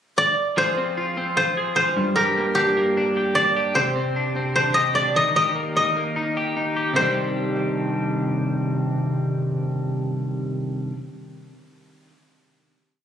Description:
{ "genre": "indie pop", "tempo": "151 BPM", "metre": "4/4", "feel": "straight", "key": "C minor", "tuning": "A4 = 440 Hz", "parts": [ { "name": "koto", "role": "melody", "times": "0.2-10.9 s", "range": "G4 to Eb5", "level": "-20 LUFS", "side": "equal", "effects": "none" }, { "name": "twelve-string electric guitar", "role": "arpeggios", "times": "0.6-11.0 s", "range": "G2 to Ab4", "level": "-23 LUFS", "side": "equal", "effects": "analog delay" } ], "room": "moderate echo chamber reverb, RT60 1.6 s, small room ambience", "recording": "recorded on a phone in the room, studio reverb, compression", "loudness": "-20 LUFS", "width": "side -9 dB against mid", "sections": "0.0-0.6 pickup bar; 0.6-7.0 pre-chorus; 7.0-10.1 final chord", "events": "none", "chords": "0.0 N.C.; 0.6 Fm; 2.0 Gm; 3.8 Csus2; 5.2 Eb; 7.0 Cmadd9" }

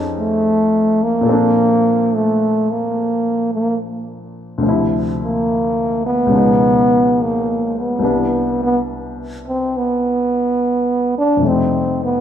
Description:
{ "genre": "jazz ballad", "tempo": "71 BPM", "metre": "4/4", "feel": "swing 69% on 8ths", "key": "unclear", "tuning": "A4 = 435 Hz", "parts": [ { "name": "warm baby grand piano", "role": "accompaniment", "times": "0.0-12.2 s", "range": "C2 to B4", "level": "-20 LUFS", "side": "left 2 dB", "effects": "none" }, { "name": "breathy trombone", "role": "melody", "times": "0.2-12.2 s", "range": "A3 to D4", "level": "-15 LUFS", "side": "equal", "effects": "none" } ], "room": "wet recital hall reverb, RT60 1.5 s", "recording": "recorded in a church or concert hall", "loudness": "-14 LUFS", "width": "side -9 dB against mid", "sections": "0.0-12.2 A section", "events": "trombone solo 0.0-12.2", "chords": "0.0 F7alt; 1.3 Bbmaj7; 4.6 Dm9; 6.3 C#9; 8.0 Cmaj9; 11.4 F9" }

